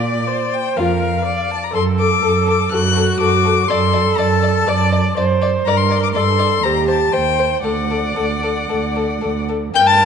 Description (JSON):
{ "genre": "quick classical-period movement for string quartet", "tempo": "122 BPM", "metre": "4/4", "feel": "rubato", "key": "unclear", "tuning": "A4 = 442 Hz", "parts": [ { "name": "rich violin", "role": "melody", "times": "0.0-10.1 s", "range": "D5 to A6", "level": "-20 LUFS", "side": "left 9 dB", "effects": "none" }, { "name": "dark violin", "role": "second line", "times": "0.0-10.1 s", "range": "F4 to A5", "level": "-20 LUFS", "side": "left 4 dB", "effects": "none" }, { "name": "warm viola", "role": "accompaniment", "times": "0.0-10.1 s", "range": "F#4 to D5", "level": "-20 LUFS", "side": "right 3 dB", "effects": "none" }, { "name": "warm cello", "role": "bass", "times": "0.0-10.1 s", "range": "D2 to Bb2", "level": "-20 LUFS", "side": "right 4 dB", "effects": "none" } ], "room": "moderate scoring stage reverb, RT60 1.9 s", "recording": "nothing above 10.4 kHz", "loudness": "-14 LUFS", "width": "side -7 dB against mid", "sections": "0.0-9.7 A section", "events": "none", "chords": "0.0 Bb; 1.8 D/F#; 3.7 D7/F#; 5.7 Gm; 6.6 Cm/Eb; 7.7 D" }